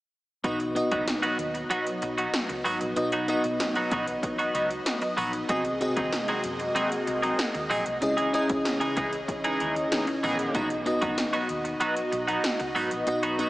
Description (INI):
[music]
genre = 1980s-style pop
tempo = 95 BPM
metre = 4/4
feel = straight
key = B major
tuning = A4 = 437 Hz
[part]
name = FM electric piano with soft pad layer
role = accompaniment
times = 0.4-13.5 s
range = B2 to D#5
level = -29 LUFS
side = equal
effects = chorus, shimmer reverb
[part]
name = phased analog pad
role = sustained chords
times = 0.4-13.5 s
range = B#2 to D#5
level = -33 LUFS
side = equal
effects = phaser, chorus, shimmer reverb
[part]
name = twelve-string electric guitar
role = riff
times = 0.4-13.5 s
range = E3 to G#4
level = -29 LUFS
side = right 1 dB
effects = wide subtle chorus, tape echo, shimmer reverb
[part]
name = vintage muted fingered electric bass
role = bass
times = 0.4-13.4 s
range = G#1 to F#2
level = -43 LUFS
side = equal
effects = none
[part]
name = 80s electronic pad drums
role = drums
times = 0.4-13.5 s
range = hi-hat, kick drum, snare drum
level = -33 LUFS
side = equal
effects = gated reverb
[part]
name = analog synth brass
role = stabs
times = 9.4-10.6 s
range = D#3 to G#4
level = -35 LUFS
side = equal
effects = chorus, tape echo, shimmer reverb
[sound]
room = moderate lush hall reverb, RT60 2.7 s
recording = small speaker sound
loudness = -25 LUFS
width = side -17 dB against mid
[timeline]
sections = 0.4-13.5 A section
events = band accent 8.0-10.5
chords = 0.4 B; 5.5 G#7/B#; 8.0 C#madd9; 10.5 B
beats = | 0.44 1.07 1.71 2.34 | 2.97 3.60 4.23 4.86 | 5.50 6.13 6.76 7.39 | 8.02 8.65 9.28 9.92 | 10.55 11.18 11.81 12.44 | 13.07